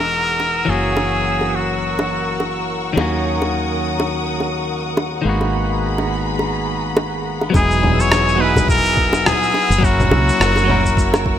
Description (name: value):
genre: sunset chillout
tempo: 105 BPM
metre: 4/4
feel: swing 56% on 16ths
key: unclear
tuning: A4 = 440 Hz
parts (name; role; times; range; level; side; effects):
- trumpet with straight mute; melody; 0.0-2.7, 7.6-11.4 s; F#4 to C#5; -18 LUFS; left 1 dB; digital delay
- clean electric guitar; accompaniment; 0.0-11.4 s; D#3 to A#4; -21 LUFS; equal; auto-pan, digital delay
- rich studio string section; sustained chords; 0.0-11.4 s; G#4 to E6; -25 LUFS; left 3 dB; vintage 12-bit sampler grit
- woody fretless electric bass; bass; 0.0-11.4 s; E1 to D#2; -22 LUFS; equal; none
- bongos; percussion; 0.4-11.2 s; none; -23 LUFS; equal; none
- electronic cabasa, congas and rim click; drums; 7.5-11.2 s; none; -21 LUFS; left 1 dB; none
- electronic kick drum; drums; 7.5-11.4 s; none; -19 LUFS; equal; overdrive
room: light reverb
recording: none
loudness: -15 LUFS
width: side -10 dB against mid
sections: 0.0-7.5 A section; 7.5-11.4 B section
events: none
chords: 0.0 Emaj9; 0.7 F#7; 3.0 D#m7; 5.3 G#m9; 7.5 Emaj9; 9.8 F#7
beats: 0.11 | 0.69 1.26 1.83 2.40 | 2.97 3.54 4.11 4.68 | 5.26 5.83 6.40 6.97 | 7.54 8.11 8.69 9.26 | 9.83 10.40 10.97